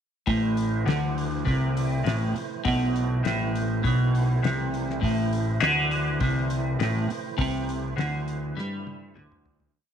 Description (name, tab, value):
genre	psychedelic rock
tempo	101 BPM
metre	4/4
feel	straight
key	A minor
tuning	A4 = 442 Hz
part	tonewheel organ	sustained chords	0.3-9.7 s	E3 to C5	-36 LUFS	right 9 dB	slow rotary speaker, overdrive, chorus vibrato
part	clean electric guitar	riff	0.3-9.7 s	A2 to G3	-24 LUFS	equal	phaser, double-tracked left and right
part	fuzz picked electric bass	bass	0.3-9.7 s	A1 to G2	-33 LUFS	equal	overdrive
part	cloth-damped thuddy drum kit	drums	0.3-9.7 s	hi-hat, kick drum, snare drum, toms	-33 LUFS	left 3 dB	none
room	moderate echo chamber reverb, RT60 2.6 s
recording	1960s-style stereo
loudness	-23 LUFS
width	side -8 dB against mid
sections	0.3-9.8 riff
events	fade-out 7.4-9.8; drum fill 8.6-9.8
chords	0.3 Am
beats	| 0.27 0.87 1.46 2.06 | 2.65 3.25 3.84 4.43 | 5.02 5.61 6.21 6.79 | 7.39 7.98 8.57 9.16